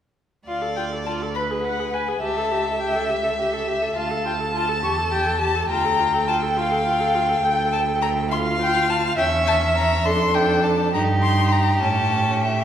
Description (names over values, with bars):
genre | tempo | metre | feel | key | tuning
quick classical-period movement for string quartet | 69 BPM (dotted quarters) | 6/8 | straight | D minor | A4 = 440 Hz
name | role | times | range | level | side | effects
dark violin | melody | 0.5-12.6 s | E5 to C#6 | -24 LUFS | left 5 dB | none
rich violin | second line | 0.5-12.6 s | G4 to A5 | -23 LUFS | equal | none
clear viola | accompaniment | 0.5-12.6 s | C#4 to B4 | -27 LUFS | right 2 dB | none
rich cello | bass | 0.5-12.6 s | C#2 to A2 | -26 LUFS | right 2 dB | none
room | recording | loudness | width
wet recital hall reverb, RT60 1.7 s | recorded in a church or concert hall | -19 LUFS | side -9 dB against mid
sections
0.5-12.6 A section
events
none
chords
0.5 Dm; 1.4 Bm6/D; 2.2 A7/C#; 4.0 Dm; 4.8 A5/E; 5.7 Dm; 7.4 Gsus2/D; 8.3 Dm; 9.2 Edim7(no3); 10.1 Dm/F; 10.9 Eb/G; 11.8 A